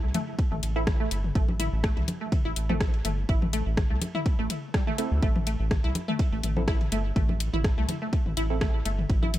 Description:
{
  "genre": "minimal techno",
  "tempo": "124 BPM",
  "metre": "4/4",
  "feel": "swing 54% on 16ths",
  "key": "A minor",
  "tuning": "A4 = 439 Hz",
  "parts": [
    { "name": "rubbery square bass", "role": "bass", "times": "0.0-9.4 s", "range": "G1 to D2", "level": "-28 LUFS", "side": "equal", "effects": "sidechain pumping" },
    { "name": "resonant blip pluck", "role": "riff", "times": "0.1-9.3 s", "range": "G3 to E4", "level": "-33 LUFS", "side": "equal", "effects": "wide subtle chorus, sidechain pumping, tape echo" },
    { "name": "dusty soul sampler-style drum kit", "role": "drums", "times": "0.1-9.4 s", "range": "ride cymbal, snare drum", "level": "-46 LUFS", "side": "right 5 dB", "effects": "overdrive, high-pass filter on cymbals, high-pass filter on snare, high-pass filter on room, tape echo" },
    { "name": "house drum kit", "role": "drums", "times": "0.1-9.4 s", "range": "hi-hat, rim click", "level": "-34 LUFS", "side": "left 2 dB", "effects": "overdrive" },
    { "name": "electronic toms and congas", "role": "percussion", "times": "0.1-9.4 s", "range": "none", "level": "-34 LUFS", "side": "left 2 dB", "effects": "tape echo" },
    { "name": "electronic kick drum", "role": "drums", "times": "0.4-9.2 s", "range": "none", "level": "-26 LUFS", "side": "equal", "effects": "overdrive" },
    { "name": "wavetable chord stab", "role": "stabs", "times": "0.8-8.6 s", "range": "C4 to A4", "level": "-36 LUFS", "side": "right 4 dB", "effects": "tape echo" }
  ],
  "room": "little or no reverb",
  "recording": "echo-heavy mix",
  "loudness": "-24 LUFS",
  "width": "side -14 dB against mid",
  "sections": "0.0-9.4 A section",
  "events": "none",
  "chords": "none"
}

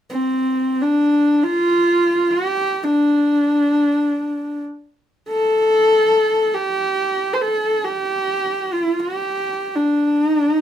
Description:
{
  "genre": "mongolian traditional",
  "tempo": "free time",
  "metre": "none",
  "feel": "none",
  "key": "D yu mode",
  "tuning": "A4 = 438 Hz",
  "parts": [
    { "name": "rich horsehead fiddle", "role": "melody", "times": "0.1-10.6 s", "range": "C4 to C5", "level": "-16 LUFS", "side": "equal", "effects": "none" }
  ],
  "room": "wet studio reverb, RT60 0.5 s",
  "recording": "band playing live in one room",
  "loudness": "-16 LUFS",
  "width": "side -10 dB against mid",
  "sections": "0.0-10.6 A section",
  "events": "none",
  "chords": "none"
}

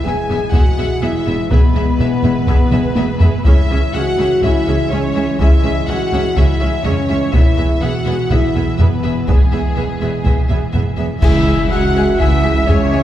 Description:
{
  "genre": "cinematic, epic orchestral film score",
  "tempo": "124 BPM",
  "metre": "4/4",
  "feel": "straight",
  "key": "C# minor",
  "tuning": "A4 = 440 Hz",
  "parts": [
    { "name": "warm symphonic violin section", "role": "second line", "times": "0.0-13.0 s", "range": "G#4 to G#5", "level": "-26 LUFS", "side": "left 2 dB", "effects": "none" },
    { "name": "mellow French horn section", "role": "sustained chords", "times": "0.0-13.0 s", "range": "G#3 to G#4", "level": "-20 LUFS", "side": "left 2 dB", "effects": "none" },
    { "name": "mellow trombone section", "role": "sustained chords", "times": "0.0-13.0 s", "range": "E3 to B3", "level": "-26 LUFS", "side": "right 3 dB", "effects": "none" },
    { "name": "warm symphonic violin section", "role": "melody", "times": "0.1-13.0 s", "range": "C#5 to F#5", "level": "-28 LUFS", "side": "left 3 dB", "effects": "none" },
    { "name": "warm symphonic viola section", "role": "accompaniment", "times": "0.1-13.0 s", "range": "G#3 to G#4", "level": "-25 LUFS", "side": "right 1 dB", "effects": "none" },
    { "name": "rich symphonic cello section", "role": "bass", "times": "0.1-13.0 s", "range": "C#2 to E2", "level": "-24 LUFS", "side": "right 2 dB", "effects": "none" },
    { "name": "rich symphonic double bass section", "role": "bass", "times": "0.1-13.0 s", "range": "E1 to C#2", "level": "-22 LUFS", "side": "right 2 dB", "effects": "none" },
    { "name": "taiko ensemble", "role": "drums", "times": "0.5-12.9 s", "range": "none", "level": "-15 LUFS", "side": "equal", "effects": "none" },
    { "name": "bright concert flute", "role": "second line", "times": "11.2-13.0 s", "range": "C#5 to F#5", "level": "-23 LUFS", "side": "left 3 dB", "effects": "none" },
    { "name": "mellow trumpet", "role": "stabs", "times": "11.2-13.0 s", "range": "E5", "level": "-24 LUFS", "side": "equal", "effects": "none" },
    { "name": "clash cymbals and concert bass drum", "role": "percussion", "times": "11.2-12.2 s", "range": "none", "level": "-22 LUFS", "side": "equal", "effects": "none" }
  ],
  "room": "wet scoring stage reverb, RT60 2.2 s",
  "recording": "heard from further back in the room",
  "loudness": "-12 LUFS",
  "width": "side -12 dB against mid",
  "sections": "0.0-11.2 A section; 11.2-13.0 A section",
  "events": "drum fill 2.7-3.5; band accent 11.2-11.7",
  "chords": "0.0 E; 3.5 C#m; 7.3 E; 11.2 C#m"
}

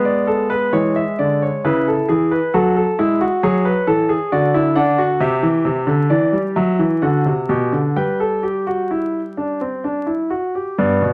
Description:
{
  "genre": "classical, baroque-style 3-part fugue for grand piano",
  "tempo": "66 BPM",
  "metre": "3/4",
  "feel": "straight",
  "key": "D major, G major from 5.2 s",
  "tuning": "A4 = 437 Hz",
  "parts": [
    { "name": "warm concert grand piano", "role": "solo", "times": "0.0-11.1 s", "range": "G2 to G5", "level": "-18 LUFS", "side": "equal", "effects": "none" }
  ],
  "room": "moderate studio reverb, RT60 0.8 s",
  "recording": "vinyl crackle",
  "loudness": "-18 LUFS",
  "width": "mono",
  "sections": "0.0-10.8 A section",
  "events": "none",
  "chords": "0.0 G#dim; 1.6 C#m; 2.5 F#m; 4.3 Dadd9; 5.2 C; 7.0 D7; 8.0 G5"
}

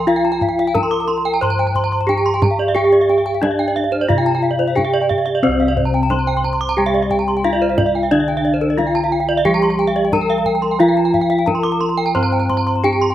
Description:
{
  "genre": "Balinese gamelan",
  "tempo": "90 BPM",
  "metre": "4/4",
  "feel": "straight",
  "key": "C slendro",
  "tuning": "A4 = 440 Hz",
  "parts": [
    { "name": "gamelan-type bronze metallophone", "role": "melody", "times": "0.0-13.1 s", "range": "C4 to C5", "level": "-19 LUFS", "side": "equal", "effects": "slapback echo" },
    { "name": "gamelan-type bronze metallophone", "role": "arpeggios", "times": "0.0-13.1 s", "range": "C5 to D6+30c", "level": "-21 LUFS", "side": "right 5 dB", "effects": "none" },
    { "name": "gamelan-type bossed gongs", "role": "bass", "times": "0.0-13.1 s", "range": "C2 to G4+25c", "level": "-21 LUFS", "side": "equal", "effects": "none" },
    { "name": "gamelan-type bronze metallophone", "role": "arpeggios", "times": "0.1-13.1 s", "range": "Bb4-45c to C6", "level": "-22 LUFS", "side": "left 5 dB", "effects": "slapback echo" },
    { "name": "kendang", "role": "percussion", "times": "0.2-12.7 s", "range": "none", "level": "-23 LUFS", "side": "right 1 dB", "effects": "none" },
    { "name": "gamelan-type bronze metallophone", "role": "accompaniment", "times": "5.4-13.1 s", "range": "C3 to C4", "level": "-24 LUFS", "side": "left 2 dB", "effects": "none" }
  ],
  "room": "little or no reverb",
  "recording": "recorded outdoors, with no room sound",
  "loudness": "-14 LUFS",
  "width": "side -12 dB against mid",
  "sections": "0.0-13.1 A section",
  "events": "none",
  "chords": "none"
}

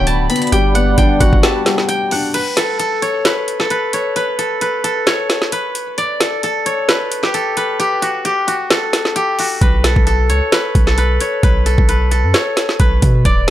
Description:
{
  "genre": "hip hop, trap",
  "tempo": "132 BPM",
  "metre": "4/4",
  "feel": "half-time",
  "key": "B minor",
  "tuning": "A4 = 440 Hz",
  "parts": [
    { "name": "steel-string zither", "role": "melody", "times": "0.0-13.5 s", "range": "F#4 to C#6", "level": "-17 LUFS", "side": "left 1 dB", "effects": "low-pass filter, tape echo" },
    { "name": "warm velvety synth lead", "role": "second line", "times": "0.0-1.4 s", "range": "D5", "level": "-23 LUFS", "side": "right 1 dB", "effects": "chorus, tremolo, tape echo" },
    { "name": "felt-muted upright piano", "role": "accompaniment", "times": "0.0-2.4 s", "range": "D3 to G4", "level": "-18 LUFS", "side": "left 3 dB", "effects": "low-pass filter" },
    { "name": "hollow soft pad", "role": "sustained chords", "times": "0.0-2.3 s", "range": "G3 to B5", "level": "-25 LUFS", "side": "equal", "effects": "chorus" },
    { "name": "long sustained 808-style bass", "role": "bass", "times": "0.0-1.4, 9.6-13.5 s", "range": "D1 to B2", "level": "-15 LUFS", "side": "equal", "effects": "none" },
    { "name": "trap drum kit", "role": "drums", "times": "0.1-13.5 s", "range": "crash cymbal, hi-hat, kick drum, snare drum", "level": "-16 LUFS", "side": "equal", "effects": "none" }
  ],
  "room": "little or no reverb",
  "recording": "dry, gritty hardware recording",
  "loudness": "-13 LUFS",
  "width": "side -13 dB against mid",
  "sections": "0.0-2.3 A section; 2.3-13.5 B section",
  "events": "break 1.4-2.3, 2.3-9.6",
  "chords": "0.0 D6; 0.5 Gmaj7; 2.3 N.C.; 9.6 B5"
}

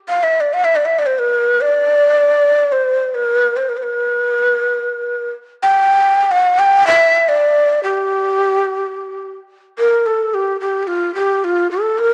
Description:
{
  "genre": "arabic",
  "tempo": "108 BPM",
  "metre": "4/4",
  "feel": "straight",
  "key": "G maqam rast",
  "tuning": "A4 = 441 Hz",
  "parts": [
    { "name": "breathy ney", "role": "solo", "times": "0.1-12.1 s", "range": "F4 to G5", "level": "-15 LUFS", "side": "equal", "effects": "cassette tape" }
  ],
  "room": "moderate spring reverb, RT60 2.4 s",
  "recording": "home recording on cassette",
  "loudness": "-15 LUFS",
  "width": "mono",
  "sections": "0.0-9.8 A section; 9.8-12.1 B section",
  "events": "none",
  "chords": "none"
}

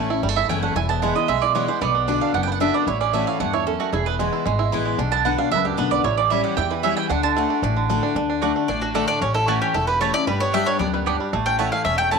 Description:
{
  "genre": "bluegrass",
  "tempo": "227 BPM",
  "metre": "4/4",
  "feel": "straight",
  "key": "D major",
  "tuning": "A4 = 440 Hz",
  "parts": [
    { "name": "picked steel-string acoustic guitar", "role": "accompaniment", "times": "0.0-12.2 s", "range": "E2 to G4", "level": "-25 LUFS", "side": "left 13 dB", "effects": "none" },
    { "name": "bluegrass banjo", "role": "arpeggios", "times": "0.0-12.2 s", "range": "D3 to G4", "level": "-25 LUFS", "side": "right 10 dB", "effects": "none" },
    { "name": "upright bass", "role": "bass", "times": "0.0-12.2 s", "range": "E1 to E2", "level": "-27 LUFS", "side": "equal", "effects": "none" },
    { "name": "mandolin", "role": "stabs", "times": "0.4-12.2 s", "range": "A3 to A5", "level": "-24 LUFS", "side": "right 12 dB", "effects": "none" },
    { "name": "mandolin", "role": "melody", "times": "8.7-12.2 s", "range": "F#4 to A5", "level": "-22 LUFS", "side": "left 1 dB", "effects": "slapback echo" },
    { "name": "lap resonator guitar", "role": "second line", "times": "10.9-11.4 s", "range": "G4 to B4", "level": "-38 LUFS", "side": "left 11 dB", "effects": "none" }
  ],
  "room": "light reverb, small room ambience",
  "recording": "1960s-style stereo with parts hard left and right",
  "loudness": "-19 LUFS",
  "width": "side -5 dB against mid",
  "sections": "0.0-8.2 A section; 8.2-12.2 B section",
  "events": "mandolin solo 0.0-8.2",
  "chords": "0.0 A; 0.8 E; 1.8 Bm; 2.9 A6; 3.9 E; 5.0 Bm; 6.0 A7; 7.1 D; 9.2 A; 10.3 G; 11.3 A"
}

